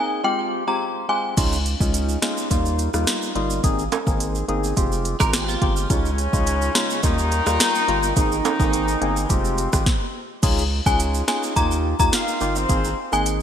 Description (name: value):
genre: dancehall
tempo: 106 BPM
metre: 4/4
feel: straight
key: unclear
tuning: A4 = 438 Hz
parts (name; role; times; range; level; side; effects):
- synth chime; melody; 0.0-1.2, 10.9-13.2 s; G5 to Bb5; -24 LUFS; left 2 dB; ensemble chorus, ping-pong delay
- percussive organ stab; accompaniment; 0.0-13.4 s; G3 to Ab4; -25 LUFS; left 1 dB; chorus, sidechain pumping
- saturated sub bass; bass; 1.4-13.4 s; F1 to Eb2; -25 LUFS; equal; none
- afro-pop drum kit; drums; 1.4-13.4 s; crash cymbal, hi-hat, kick drum, rim click, snare drum; -22 LUFS; equal; gated reverb
- tube shaker and timbales; percussion; 1.4-13.4 s; none; -30 LUFS; right 8 dB; none
- clean electric guitar; arpeggios; 5.2-5.9 s; F4 to Bb4; -28 LUFS; right 5 dB; ensemble chorus, ping-pong delay
- dark horn section; second line; 5.9-13.0 s; C3 to F5; -24 LUFS; left 1 dB; ping-pong delay
room: moderate lush hall reverb, RT60 1.9 s, digital ambience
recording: bright 1980s-style digital production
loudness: -18 LUFS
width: side -8 dB against mid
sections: 0.0-1.4 A section; 1.4-10.4 B section; 10.4-13.4 C section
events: stop 9.9-10.4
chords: 0.2 Fmadd9; 1.4 Dbadd9; 2.5 Ebadd9; 3.6 Abadd9; 4.8 Fmadd9; 5.9 Dbadd9; 7.0 Ebadd9; 8.2 Abadd9; 9.3 Fmadd9; 10.4 Dbadd9; 11.6 Ebadd9; 12.7 Abadd9